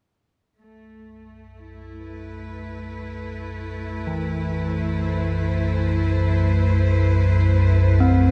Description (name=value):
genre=dark ambient drone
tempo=free time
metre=none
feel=none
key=unclear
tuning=A4 = 438 Hz
part: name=clear symphonic cello section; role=sustained chords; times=0.6-8.3 s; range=A3 to C5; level=-31 LUFS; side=equal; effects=none
part: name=deep rumbling drone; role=drone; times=2.3-8.3 s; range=B1 to F#2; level=-23 LUFS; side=equal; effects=built-in reverb, lush chorus
part: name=gamelan-type bronze metallophone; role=arpeggios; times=4.1-8.3 s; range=E3 to C4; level=-29 LUFS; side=equal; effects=delay
room=light reverb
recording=none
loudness=-20 LUFS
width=mono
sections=0.6-8.3 A section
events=fade-in on cello section 0.6-8.3; fade-in on bronze metallophone 0.6-8.3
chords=0.6 Am